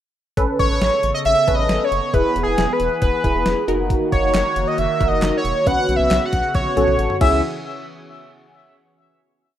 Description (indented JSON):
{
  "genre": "synth-pop",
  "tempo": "136 BPM",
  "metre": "4/4",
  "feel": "straight",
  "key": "unclear",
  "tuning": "A4 = 440 Hz",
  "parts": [
    { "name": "funky polysynth comp", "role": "accompaniment", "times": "0.4-7.4 s", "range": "C#4 to B4", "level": "-22 LUFS", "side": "left 1 dB", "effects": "chorus" },
    { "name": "phased analog pad", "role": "sustained chords", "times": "0.4-7.4 s", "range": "C#3 to A4", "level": "-27 LUFS", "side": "equal", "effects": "phaser, chorus" },
    { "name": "rubbery square bass", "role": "bass", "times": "0.4-7.4 s", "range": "E1 to C#2", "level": "-24 LUFS", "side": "equal", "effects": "none" },
    { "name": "clean 12-bit digital drum machine", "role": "drums", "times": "0.4-7.3 s", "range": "crash cymbal, handclaps, hi-hat, kick drum, snare drum, toms", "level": "-23 LUFS", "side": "equal", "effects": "none" },
    { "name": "octave-doubled lead", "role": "melody", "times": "0.6-7.4 s", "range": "G#4 to F#5", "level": "-19 LUFS", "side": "right 1 dB", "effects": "chorus, phaser, digital delay" }
  ],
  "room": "moderate plate reverb, RT60 1.8 s",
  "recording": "rough home demo mix",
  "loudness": "-16 LUFS",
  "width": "side -11 dB against mid",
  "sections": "0.4-7.4 pre-chorus; 7.4-9.2 final hit",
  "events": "drum fill 6.5-7.4",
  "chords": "0.4 Aadd9; 2.1 E; 3.7 F#6; 5.7 Bsus2; 7.2 C#m; 7.4 N.C."
}